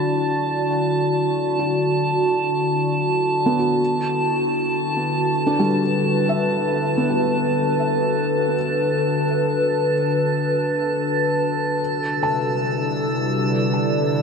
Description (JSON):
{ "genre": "ambient", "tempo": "free time", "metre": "none", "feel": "none", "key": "unclear", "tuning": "A4 = 440 Hz", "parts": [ { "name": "warbly tape-like pad", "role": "sustained chords", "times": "0.0-14.2 s", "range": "C3 to D5", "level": "-20 LUFS", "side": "left 1 dB", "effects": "chorus, built-in reverb" }, { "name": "felt-muted upright piano", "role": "arpeggios", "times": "0.0-14.2 s", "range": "G3 to A5", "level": "-26 LUFS", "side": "equal", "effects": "ping-pong delay" }, { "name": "drifting glass-harmonics texture", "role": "texture", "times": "0.0-14.2 s", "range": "A5 to E6", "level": "-25 LUFS", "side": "right 3 dB", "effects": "chorus, built-in reverb" }, { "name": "bowed-like drone", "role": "drone", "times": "12.7-14.2 s", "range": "D3", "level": "-29 LUFS", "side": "right 2 dB", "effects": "built-in reverb" } ], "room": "wet huge ambient reverb, RT60 9.0 s", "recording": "none", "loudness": "-18 LUFS", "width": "side -5 dB against mid", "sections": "0.0-14.2 A section", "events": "none", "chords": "0.0 D; 3.8 Gmaj9/D; 11.8 C69" }